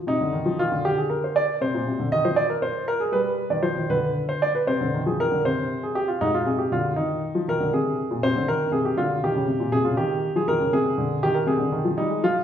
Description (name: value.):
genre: classical, baroque-style suite movement for grand piano.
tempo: 79 BPM (dotted quarters).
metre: 12/8.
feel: rubato.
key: C minor.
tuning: A4 = 440 Hz.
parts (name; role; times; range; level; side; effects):
warm baby grand piano; solo; 0.1-12.4 s; Ab2 to Eb5; -21 LUFS; equal; none.
room: wet recital hall reverb, RT60 1.3 s.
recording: recorded in a church or concert hall.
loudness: -21 LUFS.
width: side -9 dB against mid.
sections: 0.1-12.4 A section.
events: none.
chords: 0.1 Cm; 3.1 G5; 4.7 Cm; 6.2 Ab; 9.2 Eb7; 10.7 Ab/C.